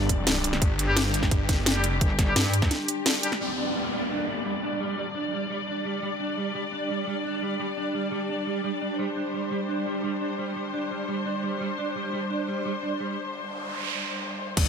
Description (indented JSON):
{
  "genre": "dark technical drum and bass",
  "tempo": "172 BPM",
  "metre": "4/4",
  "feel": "straight",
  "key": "unclear",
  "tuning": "A4 = 445 Hz",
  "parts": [
    { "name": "muted studio string section", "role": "sustained chords", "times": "0.0-14.7 s", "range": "G3 to D5", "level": "-31 LUFS", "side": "left 2 dB", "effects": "sidechain pumping, low-pass filter" },
    { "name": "snarling distorted saw bass", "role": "bass", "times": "0.0-2.0, 14.6-14.7 s", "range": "G1", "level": "-27 LUFS", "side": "equal", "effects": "distortion, sidechain pumping" },
    { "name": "deep dark ambient pad", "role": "texture", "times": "0.0-13.2 s", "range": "D4 to C6", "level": "-36 LUFS", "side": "right 1 dB", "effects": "chorus, built-in reverb, sidechain pumping" },
    { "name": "drum and bass drum kit", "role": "drums", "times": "0.1-3.4, 14.6 s", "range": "crash cymbal, hi-hat, snare drum", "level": "-25 LUFS", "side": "equal", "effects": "overdrive, low-pass filter on hats, low-pass filter on snare, low-pass filter on cymbals" },
    { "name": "electronic kick drum", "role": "drums", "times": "0.1-2.7, 14.6 s", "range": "none", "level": "-24 LUFS", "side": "equal", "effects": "overdrive" },
    { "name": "warm brass ensemble", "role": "stabs", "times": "0.9-3.3 s", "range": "G3 to G4", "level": "-32 LUFS", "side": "left 2 dB", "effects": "ping-pong delay" },
    { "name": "metallic wobble bass", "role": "bass", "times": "2.0-2.7 s", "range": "G1 to G2", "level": "-25 LUFS", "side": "equal", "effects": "chorus" },
    { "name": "mellow electric guitar", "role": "arpeggios", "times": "3.4-13.2 s", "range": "G3 to D4", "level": "-31 LUFS", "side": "right 4 dB", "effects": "ensemble chorus, sidechain pumping, ping-pong delay" },
    { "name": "downlifter, noise sweep and impact", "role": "sound effects", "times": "3.4-6.2, 13.4-14.7 s", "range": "none", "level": "-32 LUFS", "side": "equal", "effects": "none" }
  ],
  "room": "light reverb",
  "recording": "none",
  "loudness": "-25 LUFS",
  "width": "side -7 dB against mid",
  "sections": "0.0-3.4 A section; 3.4-14.6 B section",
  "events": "drop 0.0-3.4; break 2.7-3.4, 13.2-14.6; band accent 3.1; filter sweep on string section 3.4-14.6; noise sweep 13.4-14.6",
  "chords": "0.0 G5"
}